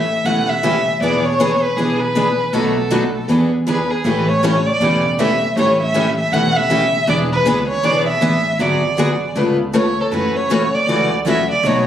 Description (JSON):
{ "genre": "acoustic string swing (jazz manouche)", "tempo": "158 BPM", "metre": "4/4", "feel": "swing 61% on 8ths", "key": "E mixolydian", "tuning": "A4 = 440 Hz", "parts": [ { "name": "warm violin", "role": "melody", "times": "0.0-11.9 s", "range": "G#4 to F#5", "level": "-18 LUFS", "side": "right 1 dB", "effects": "none" }, { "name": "upright bass", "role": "bass", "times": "0.0-11.9 s", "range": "E1 to F#2", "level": "-23 LUFS", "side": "equal", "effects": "none" }, { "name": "picked steel-string acoustic guitar", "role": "accompaniment", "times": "0.2-11.8 s", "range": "B2 to C#5", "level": "-23 LUFS", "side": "right 4 dB", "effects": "none" }, { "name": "picked steel-string acoustic guitar", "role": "accompaniment", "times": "0.3-11.9 s", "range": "B2 to B4", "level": "-20 LUFS", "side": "left 3 dB", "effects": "none" } ], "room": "moderate studio reverb, RT60 0.8 s", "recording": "recorded on a phone in the room, club reverb, compression", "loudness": "-14 LUFS", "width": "side -10 dB against mid", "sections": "0.0-11.9 A section", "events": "none", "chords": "0.0 A7; 1.0 E7; 2.5 Bm7; 3.3 E7; 4.0 A7; 7.1 E7; 8.6 G#m7b5; 9.4 C#aug7; 10.1 F#m7" }